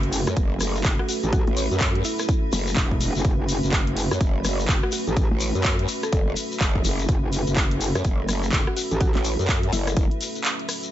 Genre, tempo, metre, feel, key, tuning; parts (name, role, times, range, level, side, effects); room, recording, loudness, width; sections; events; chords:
bass house; 125 BPM; 4/4; swing 61% on 16ths; F# minor; A4 = 440 Hz
dark analog pad; sustained chords; 0.0-10.9 s; A3 to A4; -33 LUFS; equal; chorus, sidechain pumping
metallic wobble bass; bass; 0.0-9.1 s; E1 to A1; -25 LUFS; equal; chorus, overdrive, sidechain pumping
big-room dance drum kit; drums; 0.0-10.9 s; handclaps, hi-hat, rim click; -28 LUFS; right 1 dB
granular cloud pad; texture; 0.0-10.9 s; F#4 to B5; -34 LUFS; right 1 dB; built-in reverb, sidechain pumping
shekere; percussion; 0.1-10.9 s; -33 LUFS; left 6 dB
growl bass; bass; 0.3-10.1 s; F#1 to F#2; -24 LUFS; equal; chorus, tube saturation, sidechain pumping
electronic kick drum; drums; 0.4-10.1 s; -23 LUFS; equal
mallet-like synth pluck; melody; 1.0-10.2 s; E4 to A4; -33 LUFS; right 1 dB; chorus, dub echo
little or no reverb; nothing above 7.8 kHz; -20 LUFS; side -12 dB against mid
0.0-10.9 A section
drop 0.0-10.9; kick drops out 10.4-10.9
0.0 F#m